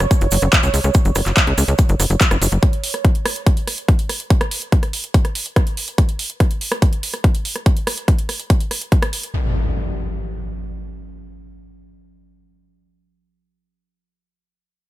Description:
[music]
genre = psychedelic trance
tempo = 143 BPM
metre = 4/4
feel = straight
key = unclear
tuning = A4 = 441 Hz
[part]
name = bubbling stepped-filter texture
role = sustained chords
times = 0.0-2.6 s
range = C#5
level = -28 LUFS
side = right 9 dB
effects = chorus, built-in reverb, sidechain pumping
[part]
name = tight sequencer bass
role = bass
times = 0.0-2.6 s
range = F#1 to C#2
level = -17 LUFS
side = equal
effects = none
[part]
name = big-room dance drum kit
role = drums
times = 0.0-9.3 s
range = handclaps, hi-hat, rim click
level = -22 LUFS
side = right 1 dB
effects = overdrive, small room ambience
[part]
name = cabasa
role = percussion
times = 0.0-2.6 s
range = none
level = -27 LUFS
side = right 6 dB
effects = none
[part]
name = electronic kick drum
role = drums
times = 0.1-9.0 s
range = none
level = -15 LUFS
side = equal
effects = overdrive, small room ambience
[part]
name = impact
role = sound effects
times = 9.3-12.7 s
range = none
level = -24 LUFS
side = equal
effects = none
[sound]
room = little or no reverb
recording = none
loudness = -15 LUFS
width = side -16 dB against mid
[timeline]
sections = 0.0-9.3 A section; 9.3-12.7 B section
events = none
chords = 0.0 F#5; 2.6 N.C.

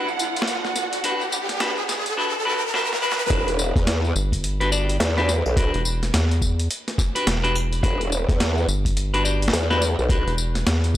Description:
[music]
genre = glitch hop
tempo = 106 BPM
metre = 4/4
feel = swing 61% on 16ths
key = E minor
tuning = A4 = 440 Hz
[part]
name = clean electric guitar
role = stabs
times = 0.0-10.3 s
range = D4 to D5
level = -26 LUFS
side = left 1 dB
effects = spring reverb, sidechain pumping, tape echo
[part]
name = riser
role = sound effects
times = 0.0-3.3 s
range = none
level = -26 LUFS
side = equal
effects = none
[part]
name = dark studio string section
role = texture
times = 0.0-2.2 s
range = E4 to F#5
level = -29 LUFS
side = right 4 dB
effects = sidechain pumping
[part]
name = boom bap sampler-style drum kit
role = drums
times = 0.1-11.0 s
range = hi-hat, snare drum, tambourine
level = -26 LUFS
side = equal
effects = none
[part]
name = growl bass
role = bass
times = 3.3-10.2 s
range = E1 to E2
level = -22 LUFS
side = equal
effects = chorus, tube saturation
[part]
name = electronic kick drum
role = drums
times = 3.3-11.0 s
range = none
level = -21 LUFS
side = equal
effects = none
[part]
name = rubbery square bass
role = bass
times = 4.2-11.0 s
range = E1 to E2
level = -22 LUFS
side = equal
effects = none
[sound]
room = digital ambience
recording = dry, gritty hardware recording, transformer saturation, high-pass filter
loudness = -19 LUFS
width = side -13 dB against mid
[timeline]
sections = 0.0-3.3 A section; 3.3-11.0 B section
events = build-up 0.0-3.3; riser 0.0-3.3; drum fill 2.7-3.3; drop 3.3-11.0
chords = 0.0 Em7

